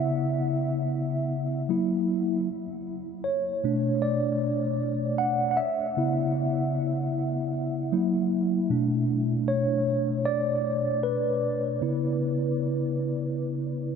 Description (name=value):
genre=R&B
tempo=77 BPM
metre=4/4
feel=swing 58% on 16ths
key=B minor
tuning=A4 = 438 Hz
part: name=mellow tine electric piano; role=solo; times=0.0-14.0 s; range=B2 to F#5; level=-24 LUFS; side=equal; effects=medium stereo tremolo, analog delay
room=wet huge ambient reverb, RT60 8.9 s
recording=dreamy mix soaked in reverb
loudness=-24 LUFS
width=side -6 dB against mid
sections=0.0-14.0 A section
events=tine electric piano solo 0.0-14.0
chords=0.0 C#m7; 1.7 F#7; 2.5 Bm9; 5.6 C#m7; 7.9 F#7; 8.7 Bm9; 11.8 C#m7